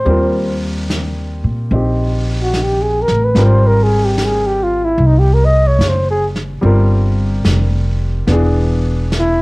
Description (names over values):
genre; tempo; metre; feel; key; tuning
jazz; 73 BPM; 4/4; swing 68% on 8ths; unclear; A4 = 440 Hz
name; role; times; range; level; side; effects
breathy flugelhorn; melody; 0.0-9.4 s; Eb4 to Eb5; -15 LUFS; equal; cassette tape, plate reverb
warm baby grand piano; accompaniment; 0.0-9.4 s; E3 to Bb4; -20 LUFS; left 1 dB; cassette tape, plate reverb
upright bass; bass; 0.0-9.4 s; E1 to Bb2; -14 LUFS; equal; none
jazz brush drum kit; drums; 0.1-9.4 s; brushed snare drum, hi-hat, snare drum; -25 LUFS; equal; none
room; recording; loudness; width
light reverb; home recording on cassette; -12 LUFS; side -25 dB against mid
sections
0.0-9.4 A section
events
flugelhorn solo 0.0-9.4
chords
0.1 Ebadd9; 3.4 Abmaj13; 6.6 Fsus24; 8.3 E7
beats
| 0.08 0.90 1.72 2.54 | 3.36 4.17 4.99 5.80 | 6.62 7.45 8.28 9.11